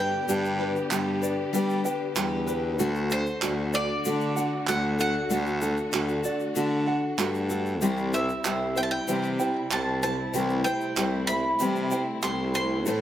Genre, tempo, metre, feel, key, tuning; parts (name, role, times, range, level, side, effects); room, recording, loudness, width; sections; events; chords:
indie folk with a building arrangement; 96 BPM; 4/4; straight; A4 = 439 Hz
bowl-back mandolin; melody; 0.0-12.8 s; C5 to C6; -30 LUFS; equal; digital delay
picked steel-string acoustic guitar; accompaniment; 0.0-13.0 s; A2 to C5; -30 LUFS; left 4 dB
dark chamber string section; sustained chords; 0.0-13.0 s; C3 to G4; -36 LUFS; equal
tenor ukulele; arpeggios; 0.0-13.0 s; F#4 to G5; -32 LUFS; right 6 dB
warm baritone saxophone; bass; 0.0-13.0 s; C2 to G3; -29 LUFS; equal
egg shaker; percussion; 0.3-13.0 s; -39 LUFS; left 6 dB
group handclap; percussion; 0.9-12.4 s; -30 LUFS; right 6 dB
light reverb, small room ambience; -24 LUFS; side -11 dB against mid
0.0-13.0 A section
0.0 G; 2.8 D; 7.8 C